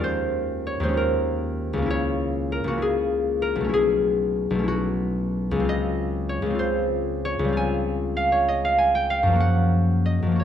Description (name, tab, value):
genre	classical, solo harp piece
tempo	58-67 BPM (dotted quarters)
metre	6/8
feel	rubato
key	unclear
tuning	A4 = 440 Hz
part	concert harp	solo	0.0-10.4 s	B1 to Ab5	-21 LUFS	left 1 dB	none
room	moderate recital hall reverb, RT60 1.4 s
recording	dark, warm production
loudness	-21 LUFS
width	side -9 dB against mid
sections	0.0-10.4 A section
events	none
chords	0.0 Eb9sus4; 1.9 Dbm6; 3.7 B9sus4; 5.7 Dbmaj9; 7.6 Fm9/Db; 9.4 Gbmaj7